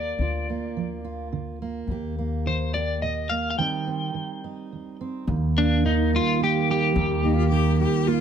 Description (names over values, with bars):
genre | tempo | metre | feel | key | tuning
acoustic folk-pop ballad | 106 BPM | 3/4 | straight | Eb major | A4 = 440 Hz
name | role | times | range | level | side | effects
electric guitar at the edge of break-up | melody | 0.0-7.8 s | D4 to G5 | -26 LUFS | left 3 dB | harmonic tremolo
fingerpicked steel-string acoustic guitar | accompaniment | 0.0-8.2 s | Eb2 to G4 | -26 LUFS | right 6 dB | none
upright bass | bass | 0.0-7.8 s | D2 to Eb2 | -27 LUFS | left 2 dB | none
rich cello | second line | 7.2-8.2 s | Eb4 to G4 | -26 LUFS | left 8 dB | none
room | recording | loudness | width
light reverb | close, detailed microphones | -22 LUFS | side -8 dB against mid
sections
0.0-5.3 A section; 5.3-8.2 B section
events
break 3.6-5.3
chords
0.2 Bb/D; 1.9 Eb; 3.6 Cm/Eb; 5.3 Eb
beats
| 0.19 0.76 1.32 | 1.89 2.45 3.01 | 3.58 4.14 4.71 | 5.28 5.84 6.40 | 6.96 7.52 8.07